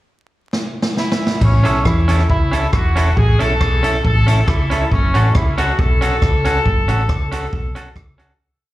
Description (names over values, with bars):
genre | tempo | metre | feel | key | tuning
ska | 138 BPM | 4/4 | swing 54% on 8ths | A major | A4 = 440 Hz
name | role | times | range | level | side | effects
swinging big-band drum kit | drums | 0.5-8.3 s | crash cymbal, hi-hat, kick drum, rim click, snare drum | -19 LUFS | equal | none
clear horn section | melody | 1.0-8.0 s | C#4 to A4 | -21 LUFS | left 1 dB | dub echo, slapback echo
hollow-body short-scale fingered electric bass | bass | 1.4-8.3 s | E1 to E2 | -16 LUFS | equal | none
electric guitar through a small old amp | accompaniment | 1.6-8.3 s | C#4 to A4 | -22 LUFS | right 1 dB | slapback echo
room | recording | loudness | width
little or no reverb | live gig heard through the venue's PA, club ambience, vinyl crackle | -14 LUFS | side -16 dB against mid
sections
0.0-1.4 pickup bar; 1.4-8.4 A section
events
drum fill 0.5-1.4; fade-out 6.7-8.4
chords
0.0 N.C.; 1.4 A; 4.9 F#m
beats
0.09 0.53 0.97 | 1.42 1.86 2.29 2.73 | 3.17 3.61 4.05 4.48 | 4.92 5.36 5.79 6.22 | 6.66 7.09 7.53 7.96